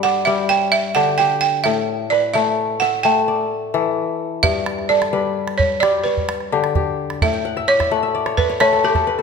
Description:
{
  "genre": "west african traditional, West African string and xylophone music",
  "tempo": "86 BPM (dotted quarters)",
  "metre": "12/8",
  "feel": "straight",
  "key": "G lydian",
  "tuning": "A4 = 440 Hz",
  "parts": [
    { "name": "balafon", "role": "melody", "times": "0.0-9.1 s", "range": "A4 to G5", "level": "-18 LUFS", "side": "right 5 dB", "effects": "none" },
    { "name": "kora", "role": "arpeggios", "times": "0.0-9.2 s", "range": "G2 to G5", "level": "-20 LUFS", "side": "left 7 dB", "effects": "none" },
    { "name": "calabash", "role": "percussion", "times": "4.4-9.2 s", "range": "none", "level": "-24 LUFS", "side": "right 4 dB", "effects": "none" }
  ],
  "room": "wet recital hall reverb, RT60 1.8 s",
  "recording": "none",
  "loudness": "-16 LUFS",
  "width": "side -5 dB against mid",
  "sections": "0.0-9.2 A section",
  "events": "kora fill 7.3-9.2",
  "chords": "0.0 G; 1.6 A; 4.4 G; 7.2 A"
}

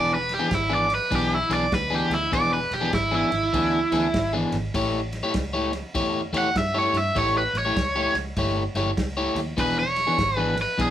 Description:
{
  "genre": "electric blues shuffle",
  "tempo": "99 BPM",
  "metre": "4/4",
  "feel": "swing 64% on 8ths",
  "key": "E mixolydian",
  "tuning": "A4 = 439 Hz",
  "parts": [
    { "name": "overdriven electric guitar", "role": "melody", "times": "0.0-10.9 s", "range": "E4 to F#5", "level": "-23 LUFS", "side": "right 1 dB", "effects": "none" },
    { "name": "electric guitar at the edge of break-up", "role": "riff", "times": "0.0-10.9 s", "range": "E3 to C#5", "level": "-26 LUFS", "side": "left 2 dB", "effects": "none" },
    { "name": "vintage muted fingered electric bass", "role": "bass", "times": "0.0-10.9 s", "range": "E1 to G2", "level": "-31 LUFS", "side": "right 1 dB", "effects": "none" },
    { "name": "warm soul drum kit", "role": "drums", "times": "0.3-10.9 s", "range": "kick drum, ride cymbal, snare drum", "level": "-31 LUFS", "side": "equal", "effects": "none" }
  ],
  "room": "moderate studio ambience, RT60 0.5 s",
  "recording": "band playing live in one room",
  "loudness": "-21 LUFS",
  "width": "side -11 dB against mid",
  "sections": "0.0-10.9 A section",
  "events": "overdriven electric guitar solo 0.0-10.9",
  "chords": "0.0 E7; 4.7 A7; 9.6 E7"
}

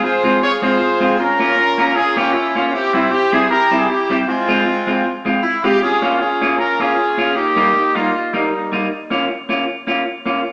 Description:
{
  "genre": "ska",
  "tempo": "156 BPM",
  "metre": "4/4",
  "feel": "swing 54% on 8ths",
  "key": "unclear",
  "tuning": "A4 = 440 Hz",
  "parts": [
    { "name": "warm horn section", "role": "melody", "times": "0.0-8.9 s", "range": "G3 to Db5", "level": "-18 LUFS", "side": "equal", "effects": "none" },
    { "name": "semi-hollow electric guitar", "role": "accompaniment", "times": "0.0-10.4 s", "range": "G3 to F4", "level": "-21 LUFS", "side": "equal", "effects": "none" }
  ],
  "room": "wet stone room reverb, RT60 1.1 s",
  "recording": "band playing live in one room, small speaker sound",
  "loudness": "-16 LUFS",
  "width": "mono",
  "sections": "0.0-10.5 A section",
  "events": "none",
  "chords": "0.0 Fm; 1.2 Bbm; 2.7 C; 4.3 Fm; 5.8 Bbm; 7.4 Eb; 8.9 Bbm"
}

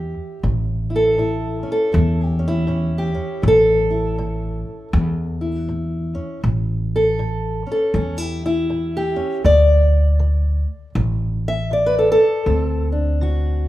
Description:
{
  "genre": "acoustic country blues, solo or duo",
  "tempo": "80 BPM",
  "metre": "4/4",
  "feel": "swing 61% on 8ths",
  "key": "A mixolydian",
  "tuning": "A4 = 440 Hz",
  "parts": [
    { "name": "fingerpicked acoustic archtop guitar", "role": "melody", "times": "0.0-13.7 s", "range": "A2 to E5", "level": "-19 LUFS", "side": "equal", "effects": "none" },
    { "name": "upright bass", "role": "bass", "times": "0.0-13.7 s", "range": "A1 to E2", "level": "-19 LUFS", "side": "equal", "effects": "none" }
  ],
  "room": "light reverb",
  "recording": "band playing live in one room",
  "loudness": "-17 LUFS",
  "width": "side -15 dB against mid",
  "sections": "0.0-13.7 A section",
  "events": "none",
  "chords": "0.0 A7; 9.4 D7(no3)"
}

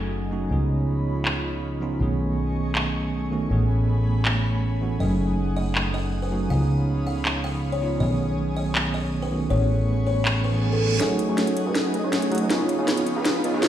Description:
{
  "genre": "future bass",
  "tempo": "160 BPM",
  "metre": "4/4",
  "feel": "half-time",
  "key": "F# dorian",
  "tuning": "A4 = 441 Hz",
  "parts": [
    { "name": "bell-like tine electric piano", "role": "accompaniment", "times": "0.0-13.7 s", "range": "D#3 to G#4", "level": "-27 LUFS", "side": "right 2 dB", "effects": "medium stereo tremolo" },
    { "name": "airy breathy pad", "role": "sustained chords", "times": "0.0-13.7 s", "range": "A3 to D#6", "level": "-35 LUFS", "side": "equal", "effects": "chorus, tremolo" },
    { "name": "fat analog bass", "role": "bass", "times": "0.0-13.7 s", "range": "F#1 to F#2", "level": "-25 LUFS", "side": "equal", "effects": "high-pass filter" },
    { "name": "trap drum kit", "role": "drums", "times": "1.3-13.7 s", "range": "handclaps, hi-hat, snare drum", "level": "-26 LUFS", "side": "equal", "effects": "low-pass filter on hats, studio ambience, low-pass filter on cymbals, low-pass filter on snare, low-pass filter on toms" },
    { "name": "buzzing kalimba", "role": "melody", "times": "5.0-10.9 s", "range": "A4 to E#5", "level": "-32 LUFS", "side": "left 3 dB", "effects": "ping-pong delay" },
    { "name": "reverse cymbal and riser", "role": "sound effects", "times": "10.4-13.7 s", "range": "none", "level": "-34 LUFS", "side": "right 3 dB", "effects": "none" },
    { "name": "soft supersaw", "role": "riff", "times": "11.0-13.7 s", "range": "A3 to D#5", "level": "-26 LUFS", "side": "right 1 dB", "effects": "low-pass filter, dub echo" }
  ],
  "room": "light reverb, digital ambience",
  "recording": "played on a big sound system in a bare room, large studio reverb",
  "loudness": "-21 LUFS",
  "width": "side -11 dB against mid",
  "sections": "0.0-11.0 A section; 11.0-13.7 B section",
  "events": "filter sweep on analog synth pad 0.0-11.0; reverse cymbal 10.4-11.0; build-up 11.0-13.7; drum fill 11.0-13.7; filter sweep on supersaw synth 11.0-13.7",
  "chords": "0.0 F#m69; 0.5 C#9; 2.0 B13; 3.5 Amaj9; 5.0 F#m69; 6.5 C#9; 8.0 B13; 9.5 Amaj9; 11.0 F#m69; 12.5 C#9"
}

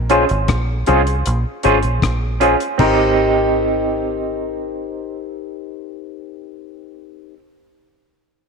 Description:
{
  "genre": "lovers rock reggae",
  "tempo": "78 BPM",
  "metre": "4/4",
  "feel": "straight",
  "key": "Ab major",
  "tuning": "A4 = 442 Hz",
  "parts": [
    { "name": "deep dub fingered electric bass", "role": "bass", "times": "0.0-7.3 s", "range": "Ab1 to C2", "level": "-20 LUFS", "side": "right 1 dB", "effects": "none" },
    { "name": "barky tine electric piano", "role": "accompaniment", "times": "0.1-7.3 s", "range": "Db4 to C5", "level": "-21 LUFS", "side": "left 9 dB", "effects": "overdrive" },
    { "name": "electric guitar through a small old amp", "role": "stabs", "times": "0.1-7.4 s", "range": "C4 to Ab4", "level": "-19 LUFS", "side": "right 12 dB", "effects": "tremolo" },
    { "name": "deep reggae drum kit", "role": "drums", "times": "0.1-3.0 s", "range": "crash cymbal, hi-hat, kick drum, rim click", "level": "-23 LUFS", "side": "left 3 dB", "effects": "none" }
  ],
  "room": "moderate plate reverb, RT60 2.2 s",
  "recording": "1960s-style stereo with parts hard left and right",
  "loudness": "-15 LUFS",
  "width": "side -5 dB against mid",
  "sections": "0.0-2.8 A section; 2.8-5.9 B section",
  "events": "none",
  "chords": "0.0 Bbm7; 2.8 Abmaj7"
}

